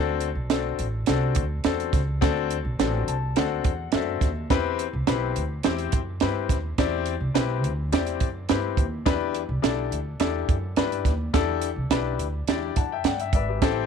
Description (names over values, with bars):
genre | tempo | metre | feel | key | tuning
uptempo 1960s-style soul | 105 BPM | 4/4 | straight | unclear | A4 = 440 Hz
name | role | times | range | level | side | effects
clear concert grand piano | accompaniment | 0.0-13.9 s | C4 to A5 | -27 LUFS | left 14 dB | none
upright bass | bass | 0.0-13.9 s | G#1 to G2 | -28 LUFS | right 1 dB | none
compact cocktail drum kit | drums | 0.2-13.8 s | hi-hat, kick drum, snare drum | -25 LUFS | right 6 dB | none
room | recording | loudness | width
light reverb, small room ambience | 1960s-style stereo with parts hard left and right | -22 LUFS | side -6 dB against mid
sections
0.0-13.9 A section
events
grand piano fill 2.8-4.5, 12.5-13.6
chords
0.0 D7; 4.5 Cmaj7; 9.1 Em7